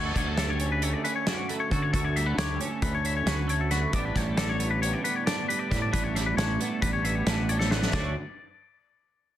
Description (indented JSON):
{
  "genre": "math rock and midwest emo",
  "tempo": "270 BPM (eighths)",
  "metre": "9/8",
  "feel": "straight",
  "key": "D major",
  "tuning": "A4 = 440 Hz",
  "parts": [
    { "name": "twelve-string electric guitar", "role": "accompaniment", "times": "0.0-8.2 s", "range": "D2 to G4", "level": "-32 LUFS", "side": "right 5 dB", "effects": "analog chorus" },
    { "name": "twangy electric guitar", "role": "arpeggios", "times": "0.0-8.2 s", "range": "A4 to E5", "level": "-30 LUFS", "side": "left 6 dB", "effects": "spring reverb, slapback echo" },
    { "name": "fuzz fingered electric bass", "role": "bass", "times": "0.0-8.1 s", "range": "A1 to D3", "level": "-29 LUFS", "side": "equal", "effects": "overdrive" },
    { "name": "loose indie drum kit", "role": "drums", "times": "0.2-8.0 s", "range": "hi-hat, kick drum, ride cymbal, snare drum", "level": "-30 LUFS", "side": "equal", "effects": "none" }
  ],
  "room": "light reverb",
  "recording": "dense, heavily limited modern master",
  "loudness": "-24 LUFS",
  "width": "side -12 dB against mid",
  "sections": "0.0-7.9 A section; 7.9-9.4 B section",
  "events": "drum fill 7.6-7.9",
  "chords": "0.0 Dmaj7; 3.9 A9sus4; 7.9 Dmaj7",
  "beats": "0.15 0.37 0.59 0.82 1.04 1.26 1.48 1.71 | 1.93 2.15 2.37 2.60 2.82 3.04 3.26 3.48 3.71 | 3.93 4.15 4.37 4.60 4.82 5.04 5.26 5.49 5.71 | 5.93 6.15 6.38 6.60 6.82 7.04 7.26 7.49 7.71 | 7.93 8.15"
}